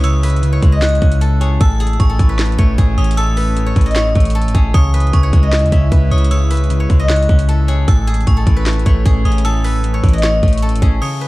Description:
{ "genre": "hip hop, trap", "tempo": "153 BPM", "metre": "4/4", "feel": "half-time", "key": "unclear", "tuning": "A4 = 439 Hz", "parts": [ { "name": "steel-string zither", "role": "melody", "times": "0.0-11.3 s", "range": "G#4 to E5", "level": "-22 LUFS", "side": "left 1 dB", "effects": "none" }, { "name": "metallic FM bell", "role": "second line", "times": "0.0-11.3 s", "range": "C#6 to F#6", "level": "-27 LUFS", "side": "right 2 dB", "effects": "chorus, ping-pong delay" }, { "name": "clean electric guitar", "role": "accompaniment", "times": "0.0-11.3 s", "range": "A2 to C#5", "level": "-20 LUFS", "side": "left 2 dB", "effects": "none" }, { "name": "airy breathy pad", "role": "sustained chords", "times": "0.0-11.3 s", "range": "C#3 to E4", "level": "-26 LUFS", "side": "right 1 dB", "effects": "chorus" }, { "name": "clean 808-style bass", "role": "bass", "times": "0.0-11.0 s", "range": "G#1 to E2", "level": "-15 LUFS", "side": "equal", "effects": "none" }, { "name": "trap drum kit", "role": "drums", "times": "0.0-10.9 s", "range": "handclaps, hi-hat, kick drum, snare drum", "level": "-14 LUFS", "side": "equal", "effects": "vintage 12-bit sampler grit" }, { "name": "downlifter", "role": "sound effects", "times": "0.0-1.6, 11.0-11.3 s", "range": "none", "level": "-40 LUFS", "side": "equal", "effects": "none" } ], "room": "digital ambience", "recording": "dark, warm production", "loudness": "-11 LUFS", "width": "side -19 dB against mid", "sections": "0.0-11.0 A section", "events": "none", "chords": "0.0 C#m; 1.6 A; 4.7 C#m; 7.9 A", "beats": "| 0.04 0.43 0.82 1.21 | 1.60 2.00 2.39 2.78 | 3.17 3.57 3.96 4.35 | 4.74 5.13 5.53 5.92 | 6.31 6.70 7.09 7.49 | 7.88 8.27 8.66 9.06 | 9.45 9.84 10.23 10.62 | 11.02" }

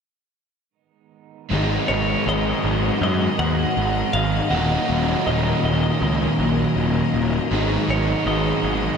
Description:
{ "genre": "rock", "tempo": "80 BPM", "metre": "4/4", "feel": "straight", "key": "unclear", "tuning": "A4 = 441 Hz", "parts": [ { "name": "clear symphonic string section", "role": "sustained chords", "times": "1.5-9.0 s", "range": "Gb3 to Eb5", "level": "-29 LUFS", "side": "equal", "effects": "none" }, { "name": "crunchy overdriven guitar", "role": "riff", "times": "1.5-9.0 s", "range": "Eb2 to Eb4", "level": "-26 LUFS", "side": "right 8 dB", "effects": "reverse reverb" }, { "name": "overdriven semi-hollow guitar", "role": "riff", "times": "1.5-9.0 s", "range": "Eb2 to Eb4", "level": "-26 LUFS", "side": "left 1 dB", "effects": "none" }, { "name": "thick fuzz guitar", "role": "riff", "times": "1.5-9.0 s", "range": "Eb2 to Ab3", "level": "-25 LUFS", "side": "left 10 dB", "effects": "distortion, analog chorus" }, { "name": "fuzz picked electric bass", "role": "bass", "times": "1.5-8.9 s", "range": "Eb1 to Gb2", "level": "-24 LUFS", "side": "equal", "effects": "overdrive" }, { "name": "twelve-string electric guitar", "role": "melody", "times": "1.9-9.0 s", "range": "Db5 to Gb5", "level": "-26 LUFS", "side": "equal", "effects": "ping-pong delay" } ], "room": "moderate huge ambient reverb, RT60 5.0 s", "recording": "dreamy mix soaked in reverb", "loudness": "-18 LUFS", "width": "side -6 dB against mid", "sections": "1.5-9.0 A section", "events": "none", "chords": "1.5 Abm7; 4.5 Ebm7; 7.5 Abm7", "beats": "| 1.51 2.26 3.01 3.76 | 4.51 5.26 6.01 6.76 | 7.51 8.26" }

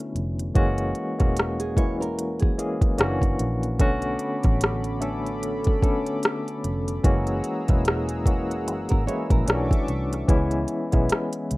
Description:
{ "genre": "R&B, neo-soul", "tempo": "74 BPM", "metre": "4/4", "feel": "swing 57% on 16ths", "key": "B dorian", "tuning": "A4 = 440 Hz", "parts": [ { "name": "nylon-string guitar", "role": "second line", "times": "0.0-3.0, 8.9-9.7 s", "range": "G#4 to C#5", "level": "-33 LUFS", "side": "right 4 dB", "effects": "none" }, { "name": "barky tine electric piano", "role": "accompaniment", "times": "0.0-11.6 s", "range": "D3 to A4", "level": "-26 LUFS", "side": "left 1 dB", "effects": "overdrive, medium tremolo" }, { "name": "organic electronic drum kit", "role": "drums", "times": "0.0-11.6 s", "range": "hi-hat, kick drum, rim click", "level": "-22 LUFS", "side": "equal", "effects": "overdrive" }, { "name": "vintage muted fingered electric bass", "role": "bass", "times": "0.2-11.6 s", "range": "E1 to C#2", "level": "-29 LUFS", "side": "equal", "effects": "none" }, { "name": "warm analog pad", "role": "sustained chords", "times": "3.8-10.3 s", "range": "C#4 to E6", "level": "-34 LUFS", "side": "right 1 dB", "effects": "chorus" } ], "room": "little or no reverb", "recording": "rough home demo mix", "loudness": "-21 LUFS", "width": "side -21 dB against mid", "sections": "0.0-10.3 A section; 10.3-11.6 B section", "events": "none", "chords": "0.0 Bm9; 0.6 F#9; 3.0 F#7b13; 3.8 Bm9; 7.0 F#9; 9.5 Bm11; 10.3 C#m7", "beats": "| 0.55 1.36 2.17 2.99 | 3.80 4.61 5.42 6.23 | 7.04 7.85 8.66 9.47 | 10.28 11.09" }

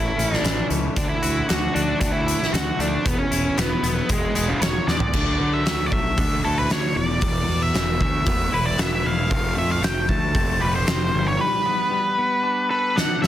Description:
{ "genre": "quiet-loud alternative rock", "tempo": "115 BPM", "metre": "4/4", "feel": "straight", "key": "unclear", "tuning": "A4 = 441 Hz", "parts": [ { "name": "octave-fuzz lead guitar", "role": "melody", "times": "0.0-13.3 s", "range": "G#3 to A5", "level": "-24 LUFS", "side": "equal", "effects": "distortion, slapback echo" }, { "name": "twangy electric guitar", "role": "arpeggios", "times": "0.0-13.3 s", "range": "E2 to A4", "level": "-29 LUFS", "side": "left 2 dB", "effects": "lush chorus" }, { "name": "fuzz picked electric bass", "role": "bass", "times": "0.0-11.4 s", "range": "E1 to D3", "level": "-25 LUFS", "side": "equal", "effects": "overdrive" }, { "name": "oversized low-tuned drum kit", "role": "drums", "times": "0.2-13.3 s", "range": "crash cymbal, hi-hat, kick drum, snare drum, toms", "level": "-24 LUFS", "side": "equal", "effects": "none" } ], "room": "light reverb", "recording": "dense, heavily limited modern master", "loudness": "-19 LUFS", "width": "side -12 dB against mid", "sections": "0.0-5.1 A section; 5.1-13.3 B section", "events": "drum fill 4.9, 13.0-13.3", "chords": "0.0 A; 1.0 D; 3.0 Eadd9; 5.1 Dadd9; 7.0 Esus4; 9.3 Fadd9; 11.1 Gadd9", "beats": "0.44 | 0.96 1.48 2.00 2.52 | 3.05 3.57 4.09 4.61 | 5.13 5.65 6.17 6.70 | 7.22 7.74 8.26 8.78 | 9.30 9.83 10.35 10.87 | 11.39 11.91 12.44 12.96" }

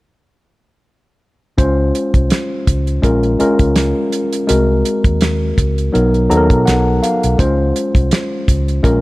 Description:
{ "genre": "lush 1970s-style soul", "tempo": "83 BPM", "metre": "4/4", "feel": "swing 54% on 16ths", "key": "Db major", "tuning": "A4 = 439 Hz", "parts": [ { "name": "tine electric piano", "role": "accompaniment", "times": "1.6-9.0 s", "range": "Gb3 to Bb5", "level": "-15 LUFS", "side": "left 1 dB", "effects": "none" }, { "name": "vintage muted fingered electric bass", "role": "bass", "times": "1.6-9.0 s", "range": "Bb1 to Cb3", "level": "-17 LUFS", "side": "equal", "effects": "none" }, { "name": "damped 70s drum kit", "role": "drums", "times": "1.6-9.0 s", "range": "hi-hat, kick drum, snare drum", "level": "-16 LUFS", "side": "equal", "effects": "none" } ], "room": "light reverb, small room reverb", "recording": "none", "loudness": "-12 LUFS", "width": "side -20 dB against mid", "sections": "1.6-9.0 A section", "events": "tine electric piano fill 5.9-7.4", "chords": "1.6 Dbmaj7; 3.0 Bbm7; 4.5 Ab9/C; 5.9 Cbmaj7; 7.4 Dbmaj7", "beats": "| 1.58 2.31 3.04 3.76 | 4.49 5.21 5.94 6.67 | 7.39 8.12 8.85" }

